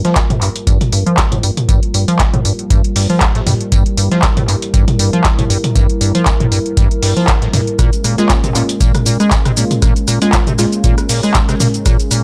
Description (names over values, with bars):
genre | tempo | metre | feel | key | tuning
acid house | 118 BPM | 4/4 | swing 55% on 16ths | unclear | A4 = 439 Hz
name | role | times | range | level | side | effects
dark analog pad | sustained chords | 0.0-12.2 s | G3 to Bb4 | -24 LUFS | equal | chorus, sidechain pumping
acid bass, square | riff | 0.0-12.2 s | G1 to Ab3 | -18 LUFS | equal | analog chorus, vintage 12-bit sampler grit, sidechain pumping, analog delay
dusty soul sampler-style drum kit | drums | 0.0-12.2 s | hi-hat, snare drum, tambourine | -28 LUFS | equal | sidechain pumping on perc, high-pass filter on perc, high-pass filter on snare, sidechain pumping on hats, high-pass filter on hats, high-pass filter on room
electro analog drum machine | drums | 0.0-12.2 s | handclaps, hi-hat, rim click, shaker, toms | -20 LUFS | equal | none
electronic kick drum | drums | 0.2-12.0 s | none | -17 LUFS | equal | none
deep mellow chord stab | stabs | 8.2-12.2 s | Ab3 to F4 | -23 LUFS | equal | chorus, analog delay
room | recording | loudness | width
little or no reverb | dry, gritty hardware recording, transformer saturation | -13 LUFS | mono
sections
0.0-12.2 A section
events
none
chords
0.0 Gm7; 7.8 Bbm7